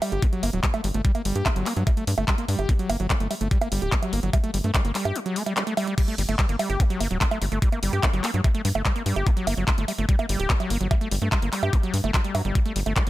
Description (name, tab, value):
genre	psychedelic trance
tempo	146 BPM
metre	4/4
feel	straight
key	G harmonic minor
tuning	A4 = 441 Hz
part	overdriven acid bass	riff	0.0-13.1 s	F#3 to G4	-28 LUFS	equal	distortion, auto-pan, cassette tape, sidechain pumping, tape echo
part	big-room dance drum kit	drums	0.0-13.1 s	bongos, crash cymbal, handclaps, hi-hat	-28 LUFS	right 2 dB	none
part	tight sequencer bass	bass	0.1-13.1 s	D1 to G2	-26 LUFS	equal	none
part	electronic kick drum	drums	0.2-13.0 s	none	-22 LUFS	equal	none
room	digital ambience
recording	none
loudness	-21 LUFS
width	side -16 dB against mid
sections	0.0-13.1 A section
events	break 5.2-6.0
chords	0.0 G5